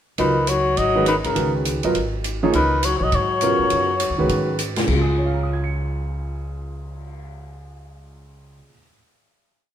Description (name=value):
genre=modal jazz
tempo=204 BPM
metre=4/4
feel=swing 61% on 8ths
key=Db mixolydian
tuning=A4 = 441 Hz
part: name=trumpet with cup mute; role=melody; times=0.2-4.6 s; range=Bb4 to Eb5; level=-22 LUFS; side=left 1 dB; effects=none
part: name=bright alto saxophone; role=second line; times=0.2-4.6 s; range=Db3 to Gb3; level=-24 LUFS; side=left 4 dB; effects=none
part: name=warm baby grand piano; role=accompaniment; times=0.2-8.9 s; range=Db2 to Db7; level=-23 LUFS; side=right 2 dB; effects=none
part: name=upright bass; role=bass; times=0.2-8.6 s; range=Ab1 to Ab2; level=-25 LUFS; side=equal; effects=none
part: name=open jazz drum kit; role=drums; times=0.2-7.2 s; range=crash cymbal, cymbal swell, hi-hat, kick drum, ride cymbal, snare drum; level=-28 LUFS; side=right 1 dB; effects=none
room=moderate stone room reverb, RT60 1.2 s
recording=band playing live in one room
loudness=-18 LUFS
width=side -10 dB against mid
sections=0.2-4.9 A section; 4.9-7.2 final chord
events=none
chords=0.2 Db13sus4; 4.9 Db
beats=| 0.18 0.48 0.77 1.07 | 1.36 1.66 1.95 2.24 | 2.54 2.83 3.12 3.42 | 3.71 4.00 4.30 4.59 | 4.88 5.18 5.47 5.76 | 6.06 6.35 6.65 6.94